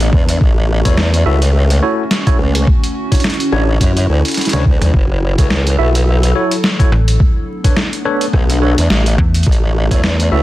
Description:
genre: glitch hop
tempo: 106 BPM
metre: 4/4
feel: swing 56% on 16ths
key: unclear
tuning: A4 = 440 Hz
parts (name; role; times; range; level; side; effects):
- warbly tape-like pad; sustained chords; 0.0-10.4 s; D3 to A4; -22 LUFS; left 1 dB; chorus, built-in reverb, phaser, sidechain pumping
- formant-sweep wobble bass; bass; 0.0-10.4 s; F#1 to F#2; -13 LUFS; equal; chorus
- boom bap sampler-style drum kit; drums; 0.0-10.3 s; hi-hat, rim click, snare drum, toms; -18 LUFS; equal; none
- electronic kick drum; drums; 0.1-10.0 s; none; -13 LUFS; equal; none
- tine electric piano; stabs; 0.9-10.4 s; D4 to E5; -20 LUFS; equal; medium stereo tremolo, sidechain pumping, tape echo
- slap-like FM bass; bass; 6.9-9.4 s; A1 to E2; -12 LUFS; equal; none
room: light reverb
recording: dense, heavily limited modern master, vinyl crackle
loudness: -11 LUFS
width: side -16 dB against mid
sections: 0.0-10.4 A section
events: drum fill 4.4-4.9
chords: 0.4 A6; 2.7 Dmaj9; 4.9 F#m7; 7.2 Bm9; 9.5 A6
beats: | 0.41 0.98 1.54 2.11 | 2.68 3.24 3.81 4.37 | 4.94 5.51 6.07 6.64 | 7.21 7.77 8.34 8.90 | 9.47 10.04

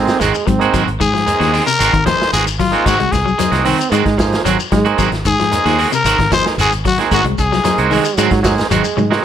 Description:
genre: afrobeat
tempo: 113 BPM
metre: 4/4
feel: straight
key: Ab mixolydian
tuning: A4 = 440 Hz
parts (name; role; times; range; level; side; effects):
- bright bass trombone; second line; 0.0-9.2 s; F3 to C4; -19 LUFS; right 6 dB; none
- combo organ; accompaniment; 0.0-9.2 s; Bb3 to C5; -21 LUFS; right 6 dB; none
- fingered electric bass; bass; 0.0-9.2 s; Ab1 to Ab2; -19 LUFS; equal; none
- vintage drum kit; drums; 0.1-9.2 s; hi-hat, kick drum, snare drum, toms; -21 LUFS; equal; none
- shekere; percussion; 0.1-9.1 s; none; -25 LUFS; left 5 dB; none
- electric guitar at the edge of break-up; arpeggios; 0.2-9.2 s; C3 to Ab3; -21 LUFS; left 8 dB; none
- electric guitar at the edge of break-up; stabs; 0.2-9.2 s; Eb3 to Gb4; -19 LUFS; right 8 dB; harmonic tremolo
- growling trumpet; melody; 1.0-7.9 s; F4 to C5; -16 LUFS; left 3 dB; none
room: light reverb, studio reverb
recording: none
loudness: -12 LUFS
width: side -9 dB against mid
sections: 0.0-9.2 A section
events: drum fill 9.0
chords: 0.0 Ab7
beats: 0.20 | 0.73 1.26 1.80 2.33 | 2.86 3.39 3.92 4.45 | 4.98 5.51 6.05 6.58 | 7.11 7.64 8.17 8.70 | 9.23

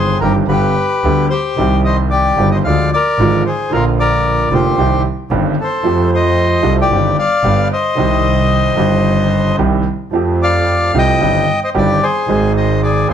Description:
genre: tango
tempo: 112 BPM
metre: 4/4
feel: rubato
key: C minor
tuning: A4 = 440 Hz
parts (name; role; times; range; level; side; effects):
- bandoneon; melody; 0.0-13.1 s; F4 to G5; -15 LUFS; left 3 dB; plate reverb
- clear baby grand piano; accompaniment; 0.0-13.1 s; Eb1 to G5; -16 LUFS; right 2 dB; none
- clear double bass; bass; 0.0-13.1 s; F1 to F2; -18 LUFS; right 1 dB; none
room: light reverb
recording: none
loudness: -12 LUFS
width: side -8 dB against mid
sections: 0.0-13.1 A section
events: none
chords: 0.5 G; 1.6 Cm; 2.7 Ddim; 3.7 Bb; 4.8 Cm; 5.8 Fadd9; 6.9 Cm/G; 7.4 G; 8.0 Cm; 10.1 Fadd9; 11.2 Cm/G; 12.3 Ab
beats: 0.49 1.03 | 1.57 2.11 2.65 3.19 | 3.72 4.25 4.78 5.32 | 5.85 6.38 6.92 7.45 | 7.98 8.52 9.05 9.60 | 10.14 10.68 11.22 11.76 | 12.30 12.83

